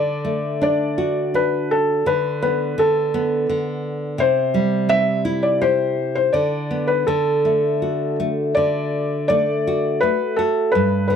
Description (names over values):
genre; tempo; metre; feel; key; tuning
children's music, lullaby; 83 BPM; 3/4; rubato; unclear; A4 = 440 Hz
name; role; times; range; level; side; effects
felt-muted upright piano; melody; 0.0-11.2 s; A4 to E5; -19 LUFS; left 1 dB; none
nylon-string guitar; accompaniment; 0.0-11.2 s; G2 to G4; -21 LUFS; equal; none
room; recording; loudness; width
light reverb; dry, close 1970s-style studio recording; -17 LUFS; side -7 dB against mid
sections
0.0-11.2 A section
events
none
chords
0.0 D; 2.1 Bm7/D; 4.2 C; 6.3 Bm/D; 7.1 D